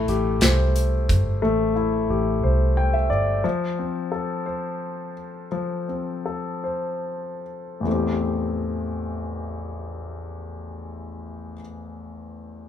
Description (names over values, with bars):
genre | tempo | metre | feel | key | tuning
six-eight pop ballad | 47-60 BPM (dotted quarters) | 6/8 | straight | A minor | A4 = 440 Hz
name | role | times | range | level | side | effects
clear concert grand piano | accompaniment | 0.0-12.7 s | A1 to G5 | -25 LUFS | left 3 dB | none
vintage muted fingered electric bass | bass | 0.0-3.4 s | G1 to C2 | -22 LUFS | equal | none
modern studio drum kit | drums | 0.1-1.3 s | hi-hat, kick drum, snare drum | -22 LUFS | equal | none
room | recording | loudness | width
light reverb | band playing live in one room | -22 LUFS | side -9 dB against mid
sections
0.0-7.9 A section; 7.9-12.7 B section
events
grand piano fill 2.4-3.4; slowing down 3.4-7.9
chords
0.0 Am7; 3.4 F; 7.9 Am7